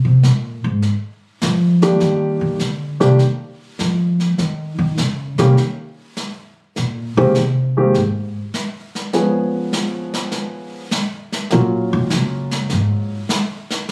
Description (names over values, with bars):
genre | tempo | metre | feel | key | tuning
jazz piano trio | 101 BPM | 4/4 | swing 69% on 8ths | unclear | A4 = 439 Hz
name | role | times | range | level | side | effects
upright bass | bass | 0.0-13.1 s | Ab2 to F3 | -19 LUFS | equal | none
snare drum and brushed snare drum | drums | 0.2-13.9 s | none | -26 LUFS | equal | none
warm baby grand piano | melody | 1.8-13.2 s | Eb3 to Bb4 | -20 LUFS | equal | plate reverb
room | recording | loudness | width
light reverb | recorded on a phone in the room, studio reverb | -18 LUFS | mono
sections
0.0-2.0 A section; 2.0-13.9 A section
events
upright bass solo 0.0-13.9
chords
0.0 Abadd9; 0.8 N.C.; 2.0 Ebmaj7; 4.4 Eb7(no3); 6.8 Abadd9; 9.1 Db7; 11.5 Gbmaj7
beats
0.23 0.82 1.42 | 2.01 2.60 3.19 3.79 | 4.38 4.98 5.57 6.16 | 6.76 7.35 7.95 8.54 | 9.13 9.73 10.32 10.92 | 11.51 12.11 12.70 13.29 | 13.89